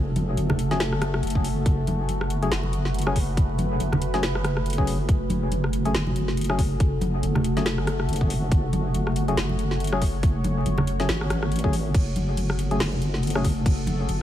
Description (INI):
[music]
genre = deep dubstep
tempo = 140 BPM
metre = 4/4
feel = swing 58% on 16ths, half-time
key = F# minor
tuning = A4 = 440 Hz
[part]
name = deep dark ambient pad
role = sustained chords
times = 0.0-14.2 s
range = A3 to C#5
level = -30 LUFS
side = equal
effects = chorus, built-in reverb
[part]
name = deep soft wobble bass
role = bass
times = 0.0-14.2 s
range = F#1 to G#1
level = -25 LUFS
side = equal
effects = chorus
[part]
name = garage drum kit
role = drums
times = 0.2-14.2 s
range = crash cymbal, hi-hat, rim click, snare drum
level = -30 LUFS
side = equal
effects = none
[part]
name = congas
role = percussion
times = 0.2-14.2 s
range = none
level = -29 LUFS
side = right 1 dB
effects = none
[part]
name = percussive organ stab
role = stabs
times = 0.7-13.5 s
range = F#3 to G#4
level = -32 LUFS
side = left 3 dB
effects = analog chorus, cassette tape, dub echo
[part]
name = electronic kick drum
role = drums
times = 1.4-13.8 s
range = none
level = -21 LUFS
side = equal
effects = none
[sound]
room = digital ambience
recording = vinyl crackle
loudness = -21 LUFS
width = side -12 dB against mid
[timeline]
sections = 0.0-14.2 A section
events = none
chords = 0.0 F#madd9